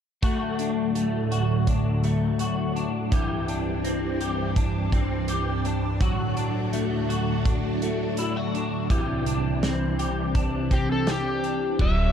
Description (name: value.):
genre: dream pop.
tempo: 83 BPM.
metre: 4/4.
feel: straight.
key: D mixolydian.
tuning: A4 = 442 Hz.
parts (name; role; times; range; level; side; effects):
phased string machine; sustained chords; 0.2-12.1 s; C2 to A4; -26 LUFS; right 1 dB; ensemble chorus, phaser.
electric guitar at the edge of break-up; arpeggios; 0.2-12.1 s; E3 to G4; -28 LUFS; left 2 dB; ensemble chorus, ping-pong delay.
loose indie drum kit; drums; 0.2-12.0 s; crash cymbal, hi-hat, kick drum, snare drum; -26 LUFS; right 1 dB; none.
overdriven slide guitar; melody; 10.7-12.1 s; G4 to E5; -27 LUFS; left 4 dB; ping-pong delay.
sub bass with octave; bass; 11.8-12.1 s; D1; -22 LUFS; equal; none.
room: light reverb, small room ambience.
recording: dark, warm production.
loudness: -23 LUFS.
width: side -8 dB against mid.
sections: 0.2-11.8 A section.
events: none.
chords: 0.2 D; 3.1 Cadd9; 6.0 D; 8.9 Cadd9.